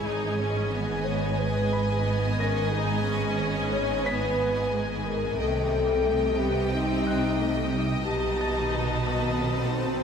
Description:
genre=cinematic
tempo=90 BPM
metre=4/4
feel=straight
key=unclear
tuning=A4 = 441 Hz
part: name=warm studio violin section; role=melody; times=0.0-10.0 s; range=G5 to A5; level=-35 LUFS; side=left 2 dB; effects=none
part: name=rich symphonic violin section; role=second line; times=0.0-10.0 s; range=B4 to D#5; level=-35 LUFS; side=left 1 dB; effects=none
part: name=rich symphonic viola section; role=accompaniment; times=0.0-10.0 s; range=G3 to D#4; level=-34 LUFS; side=equal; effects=none
part: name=mellow French horn section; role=sustained chords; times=0.0-10.0 s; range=Eb4 to C#5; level=-29 LUFS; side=left 2 dB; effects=none
part: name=shimmering ambient pad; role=sustained chords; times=0.0-10.0 s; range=C3 to D#5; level=-34 LUFS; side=right 1 dB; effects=chorus, built-in reverb
part: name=rich symphonic double bass section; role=bass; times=0.0-10.0 s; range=G#1 to C2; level=-31 LUFS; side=right 2 dB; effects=none
part: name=warm concert grand piano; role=texture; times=0.0-10.0 s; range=D#5 to B6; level=-39 LUFS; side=left 1 dB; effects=ping-pong delay
part: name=warm symphonic cello section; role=bass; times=0.1-10.0 s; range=G#2 to C3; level=-32 LUFS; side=right 1 dB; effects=none
part: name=swell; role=sound effects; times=9.3-10.0 s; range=none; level=-34 LUFS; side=right 1 dB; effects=none
room=moderate scoring stage reverb, RT60 1.6 s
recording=none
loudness=-24 LUFS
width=side -7 dB against mid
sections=0.0-10.0 A section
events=swell 9.3-10.0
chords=0.1 G#m; 5.4 Cm; 8.1 B7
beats=| 0.06 0.73 1.39 2.06 | 2.73 3.39 4.06 4.73 | 5.39 6.06 6.73 7.39 | 8.06 8.73 9.39

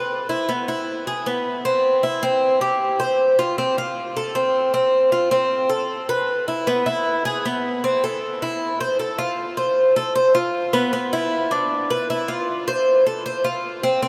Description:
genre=latin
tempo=155 BPM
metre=4/4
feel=straight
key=A minor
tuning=A4 = 440 Hz
part: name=Cuban tres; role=solo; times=0.0-14.1 s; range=B3 to C5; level=-21 LUFS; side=equal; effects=none
room=wet huge ambient reverb, RT60 7.5 s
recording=in a vast, echoing space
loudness=-21 LUFS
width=mono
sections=0.0-7.8 A section; 7.8-14.1 B section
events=none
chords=none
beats=| 0.10 0.49 0.88 1.26 | 1.65 2.04 2.42 2.81 | 3.20 3.58 3.97 4.36 | 4.75 5.13 5.52 5.91 | 6.29 6.68 7.07 7.46 | 7.84 8.23 8.62 9.00 | 9.39 9.78 10.16 10.55 | 10.94 11.32 11.71 12.10 | 12.48 12.87 13.26 13.64 | 14.03

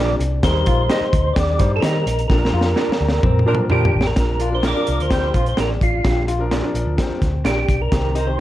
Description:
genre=uptempo 1960s-style soul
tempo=128 BPM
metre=4/4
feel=straight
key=Bb major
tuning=A4 = 440 Hz
part: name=percussive tonewheel organ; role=melody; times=0.0-8.4 s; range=F4 to D5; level=-23 LUFS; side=right 1 dB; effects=chorus vibrato, fast rotary speaker
part: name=warm concert grand piano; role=accompaniment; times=0.0-8.4 s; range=Eb3 to C5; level=-26 LUFS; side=left 1 dB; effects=none
part: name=vintage hollow-body jazz guitar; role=riff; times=0.0-8.3 s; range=C4 to F4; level=-28 LUFS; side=left 7 dB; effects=none
part: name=electric guitar through a small old amp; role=stabs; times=0.0-7.6 s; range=D4 to Eb5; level=-27 LUFS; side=right 8 dB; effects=none
part: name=hollow-body short-scale fingered electric bass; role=bass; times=0.0-8.4 s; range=A1 to Eb3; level=-21 LUFS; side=equal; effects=none
part: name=crunchy breakbeat drum kit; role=drums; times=0.2-8.3 s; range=hi-hat, kick drum, snare drum, toms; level=-20 LUFS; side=equal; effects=none
part: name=warm saxophone section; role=second line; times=3.5-8.3 s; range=F3 to D5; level=-27 LUFS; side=right 3 dB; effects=none
room=little or no reverb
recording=dark, warm production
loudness=-16 LUFS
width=side -14 dB against mid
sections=0.0-4.2 A section; 4.2-8.4 B section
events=drum fill 2.3-4.2; band accent 2.3-4.2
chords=0.4 Eb; 2.3 Bb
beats=| 0.43 0.90 1.36 1.83 | 2.30 2.77 3.23 3.70 | 4.17 4.64 5.11 5.58 | 6.04 6.51 6.98 7.45 | 7.92 8.39

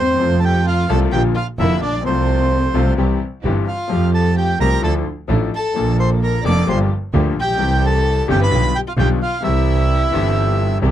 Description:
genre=tango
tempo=130 BPM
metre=4/4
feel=rubato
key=F major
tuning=A4 = 440 Hz
part: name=bandoneon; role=melody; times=0.0-10.8 s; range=C5 to D6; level=-22 LUFS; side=right 4 dB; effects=none
part: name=dark violin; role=second line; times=0.0-10.8 s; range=C4 to D5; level=-24 LUFS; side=left 5 dB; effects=none
part: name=bright concert grand piano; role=accompaniment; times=0.0-10.9 s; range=F1 to A4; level=-22 LUFS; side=left 7 dB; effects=none
part: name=clear double bass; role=bass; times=0.0-10.9 s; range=F1 to F2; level=-18 LUFS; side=right 2 dB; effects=none
part: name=dark studio string section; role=stabs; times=0.2-10.9 s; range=A3 to Bb4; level=-29 LUFS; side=right 4 dB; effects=none
room=little or no reverb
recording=dry, close 1970s-style studio recording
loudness=-15 LUFS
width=side -11 dB against mid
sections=0.0-10.9 A section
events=none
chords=0.2 F; 1.1 Bb; 2.1 F/C; 3.0 C; 3.9 Fadd9; 4.8 Dmadd9; 5.8 Bbmaj7; 6.7 Gm7; 7.6 C; 8.5 G7/B; 9.4 C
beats=| 0.21 0.67 1.13 1.59 | 2.05 2.51 2.98 3.44 | 3.90 4.37 4.83 5.29 | 5.75 6.21 6.67 7.13 | 7.59 8.05 8.51 8.97 | 9.44 9.90 10.36 10.82

